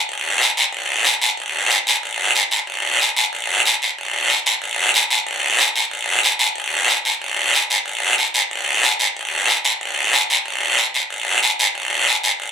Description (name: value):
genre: latin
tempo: 185 BPM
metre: 4/4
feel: straight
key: none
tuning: none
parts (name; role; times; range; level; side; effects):
- guiro; percussion; 0.1-12.5 s; none; -15 LUFS; equal; none
room: moderate small room reverb, RT60 0.5 s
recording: band playing live in one room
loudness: -15 LUFS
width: side -7 dB against mid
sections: 0.0-9.2 A section; 9.2-12.5 B section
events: none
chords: none